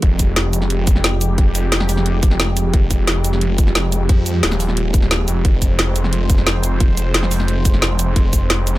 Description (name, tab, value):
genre	dark technical drum and bass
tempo	177 BPM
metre	4/4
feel	straight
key	F minor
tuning	A4 = 440 Hz
part	sweeping resonant pad	sustained chords	0.0-8.8 s	F3 to C5	-24 LUFS	right 1 dB	chorus, sidechain pumping
part	snarling distorted saw bass	bass	0.0-8.8 s	Eb1 to F2	-18 LUFS	equal	distortion, tube saturation
part	drum and bass drum kit	drums	0.0-8.8 s	cabasa, hi-hat, snare drum	-19 LUFS	equal	none
part	electronic kick drum	drums	0.0-8.4 s	none	-14 LUFS	equal	none
room	little or no reverb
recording	none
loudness	-14 LUFS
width	side -17 dB against mid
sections	0.0-8.8 A section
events	none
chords	0.0 Fmadd9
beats	| 0.03 0.36 0.70 1.04 | 1.38 1.72 2.06 2.40 | 2.74 3.08 3.42 3.75 | 4.09 4.43 4.77 5.11 | 5.45 5.79 6.13 6.47 | 6.80 7.14 7.48 7.82 | 8.16 8.50